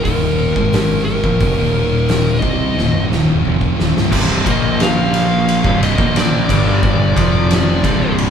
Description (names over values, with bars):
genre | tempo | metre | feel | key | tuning
stoner and doom metal | 89 BPM | 4/4 | straight | unclear | A4 = 440 Hz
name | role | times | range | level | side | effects
fuzz lead guitar | melody | 0.0-8.1 s | Bb4 to F5 | -20 LUFS | right 1 dB | distortion
thick fuzz guitar | riff | 0.0-8.3 s | C2 to C4 | -20 LUFS | left 8 dB | distortion
thick fuzz guitar | riff | 0.0-8.3 s | C2 to C4 | -20 LUFS | right 5 dB | distortion
fuzz fingered electric bass | bass | 0.1-8.3 s | C1 to C2 | -21 LUFS | equal | overdrive
oversized low-tuned drum kit | drums | 0.1-8.3 s | crash cymbal, hi-hat, kick drum, ride cymbal, snare drum, toms | -17 LUFS | equal | none
overdriven electric guitar | riff | 4.1-8.3 s | C2 to Bb3 | -21 LUFS | equal | none
room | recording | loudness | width
light reverb | band playing live in one room | -12 LUFS | side -8 dB against mid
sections
0.0-4.1 A section; 4.1-8.3 B section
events
drum fill 2.8-4.1; lead electric guitar solo 4.1-8.3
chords
0.1 Eb5; 0.6 Ab5; 1.2 Eb5; 4.1 C5; 4.5 Bb5; 5.6 Cm; 6.5 G5; 7.2 F5